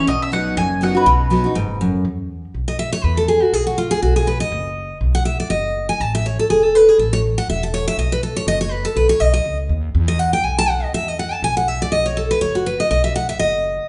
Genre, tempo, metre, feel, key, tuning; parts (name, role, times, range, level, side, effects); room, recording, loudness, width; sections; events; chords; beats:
bluegrass; 243 BPM; 4/4; swing 55% on 8ths; B mixolydian; A4 = 440 Hz
mandolin; melody; 0.0-1.8 s; B4 to G#5; -21 LUFS; equal
picked steel-string acoustic guitar; accompaniment; 0.0-13.9 s; F#2 to A5; -20 LUFS; equal
upright bass; bass; 0.1-13.8 s; E1 to E2; -24 LUFS; equal
wet large studio reverb, RT60 1.2 s; band playing live in one room, nothing above 10.7 kHz; -18 LUFS; mono
0.0-2.0 A section; 2.0-13.9 B section
steel-string acoustic guitar solo 2.0-13.9
0.1 B; 2.0 E5; 4.0 B; 6.0 A5; 8.0 B; 9.9 E5; 11.9 B
| 0.07 0.32 0.57 0.81 | 1.06 1.31 1.55 1.80 | 2.05 2.30 2.54 2.79 | 3.04 3.28 3.53 3.78 | 4.03 4.27 4.52 4.77 | 5.01 5.26 5.51 5.75 | 6.00 6.25 6.49 6.74 | 6.99 7.24 7.48 7.73 | 7.98 8.22 8.47 8.72 | 8.96 9.21 9.46 9.70 | 9.95 10.20 10.44 10.69 | 10.94 11.18 11.43 11.68 | 11.92 12.17 12.42 12.66 | 12.91 13.16 13.40 13.65